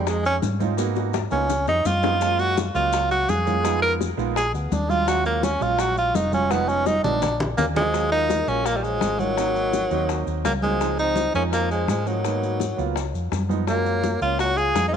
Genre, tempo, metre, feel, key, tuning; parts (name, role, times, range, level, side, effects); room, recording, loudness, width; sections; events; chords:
Afro-Cuban jazz; 168 BPM; 4/4; straight; Eb minor; A4 = 439 Hz
clear tenor saxophone; melody; 0.0-15.0 s; Gb3 to Bb4; -22 LUFS; right 1 dB
warm baby grand piano; accompaniment; 0.0-15.0 s; F3 to Ab5; -29 LUFS; right 14 dB
hollow-body short-scale fingered electric bass; bass; 0.0-15.0 s; F1 to Ab2; -27 LUFS; left 1 dB
bongos; percussion; 0.1-15.0 s; -30 LUFS; left 16 dB
congas; percussion; 0.1-14.9 s; -29 LUFS; equal
maracas; percussion; 0.1-15.0 s; -40 LUFS; left 17 dB
trombone with cup mute; second line; 7.6-15.0 s; Eb3 to F4; -31 LUFS; left 13 dB
light reverb, small room ambience; 1960s-style stereo with parts hard left and right; -20 LUFS; side -8 dB against mid
0.0-7.9 A section; 7.9-15.0 B section
tenor saxophone solo 0.0-7.9; drum fill 0.8-2.2, 6.5-7.9; grand piano fill 7.4-7.9
0.0 Dbmaj9 (rootless); 0.8 Abm9; 1.5 Db7; 2.2 Gbmaj9; 3.6 Fm7b5; 4.4 Bb7b13; 5.1 Ebm11; 6.5 Fm7b5; 7.2 Bb7b13; 7.9 Ebm11; 9.4 Ab7; 10.8 Dbmaj9; 12.2 Abm9; 13.0 Db7; 13.7 Gbmaj9